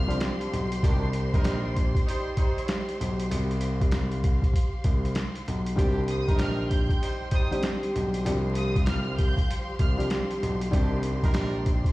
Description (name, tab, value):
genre	hip hop, boom-bap hip-hop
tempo	97 BPM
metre	4/4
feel	swing 62% on 16ths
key	C minor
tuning	A4 = 440 Hz
part	warm studio violin section	melody	0.0-0.1, 6.1-10.0 s	Eb6 to G6	-38 LUFS	right 1 dB	high-pass filter, low-pass filter, tape echo
part	warm studio string section	sustained chords	0.0-11.9 s	G4 to C6	-37 LUFS	left 1 dB	high-pass filter, low-pass filter
part	dark grand piano	bass	0.0-11.8 s	Bb1 to C2	-29 LUFS	equal	none
part	dark upright piano	accompaniment	0.1-0.6, 5.8-11.9 s	Eb3 to G4	-31 LUFS	left 1 dB	cassette tape, high-pass filter, low-pass filter
part	boom bap sampler-style drum kit	drums	0.1-11.9 s	hi-hat, kick drum, snare drum	-26 LUFS	equal	none
part	clear horn section	stabs	0.8-11.6 s	Eb3 to C5	-36 LUFS	right 3 dB	high-pass filter, low-pass filter, tape echo
room	small room ambience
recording	played on a big sound system in a bare room, stone room reverb, vinyl crackle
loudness	-24 LUFS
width	side -18 dB against mid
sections	0.0-11.9 A section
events	none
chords	0.0 G7sus4/C; 0.8 Cmadd9; 3.3 G7sus4/C; 5.8 Cmadd9; 8.3 G7sus4/C; 10.7 Cmadd9